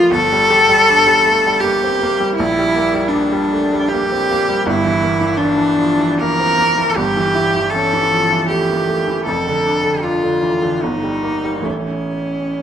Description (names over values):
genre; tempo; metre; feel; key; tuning
classical, romantic duo for cello and grand piano; 67-83 BPM; 3/4; rubato; unclear; A4 = 440 Hz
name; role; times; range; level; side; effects
rich cello; melody; 0.0-12.6 s; C#4 to Bb4; -14 LUFS; left 1 dB; none
bright grand piano; accompaniment; 0.0-12.6 s; F1 to G4; -19 LUFS; right 2 dB; none
room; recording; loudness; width
wet recital hall reverb, RT60 1.7 s; none; -13 LUFS; side -9 dB against mid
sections
0.0-12.6 A section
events
none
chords
0.1 Gm; 2.4 Gm/Bb; 4.6 Em7b5/G; 7.0 A7/G; 9.2 Dm/F; 10.8 Eb/G; 11.6 A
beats
| 0.09 0.86 1.61 | 2.35 3.09 3.90 | 4.64 5.37 6.19 | 6.96 7.71 8.47 | 9.24 10.01 10.81 | 11.64 12.53